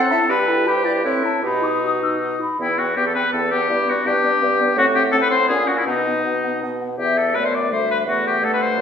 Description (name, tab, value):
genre	quick classical-period movement for wind quintet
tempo	164 BPM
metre	3/4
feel	rubato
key	E minor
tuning	A4 = 442 Hz
part	mellow hollow silver concert flute	melody	0.0-8.8 s	D5 to E6	-25 LUFS	left 3 dB	none
part	warm oboe	second line	0.0-8.8 s	D#4 to D5	-19 LUFS	left 3 dB	none
part	dark French horn	accompaniment	0.0-8.8 s	A3 to G4	-27 LUFS	left 1 dB	none
part	clear clarinet	accompaniment	0.1-8.8 s	G3 to E5	-28 LUFS	right 4 dB	none
part	mellow bassoon	bass	0.3-8.8 s	D2 to B2	-24 LUFS	right 1 dB	none
room	wet recital hall reverb, RT60 1.3 s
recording	recorded in a church or concert hall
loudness	-17 LUFS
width	side -7 dB against mid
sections	0.0-2.6 A section; 2.6-8.8 B section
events	none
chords	0.3 Em/G; 1.0 Am; 1.4 B; 2.6 Em; 3.7 G; 4.8 F#dim/A; 5.5 F#/A#; 5.9 B; 7.0 Em; 8.1 B5/E